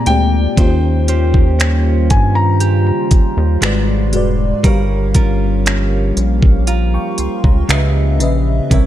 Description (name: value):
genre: contemporary R&B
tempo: 59 BPM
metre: 4/4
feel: straight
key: unclear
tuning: A4 = 441 Hz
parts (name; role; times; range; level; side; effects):
- dark concert grand piano; melody; 0.0-3.3 s; G5 to Bb5; -22 LUFS; left 3 dB; ping-pong delay
- FM electric piano with soft pad layer; accompaniment; 0.0-8.9 s; G#2 to Db6; -19 LUFS; left 3 dB; chorus
- deep dark ambient pad; sustained chords; 0.0-8.9 s; Db3 to C5; -24 LUFS; right 3 dB; chorus, built-in reverb, sidechain pumping
- direct-recorded clean electric guitar; arpeggios; 0.0-8.9 s; Bb2 to C5; -24 LUFS; right 5 dB; ping-pong delay
- rubbery square bass; bass; 0.1-8.9 s; E1 to G2; -15 LUFS; equal; none
- smooth R&B drum kit; drums; 0.1-8.9 s; finger snaps, hi-hat, kick drum; -14 LUFS; equal; none
room: digital ambience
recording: dark, warm production, faint mains hum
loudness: -12 LUFS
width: side -12 dB against mid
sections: 0.0-8.9 A section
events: none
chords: 0.0 Bb13; 0.6 Eb13; 3.6 G#m7b5; 4.6 Gm7b5; 7.7 Dbm7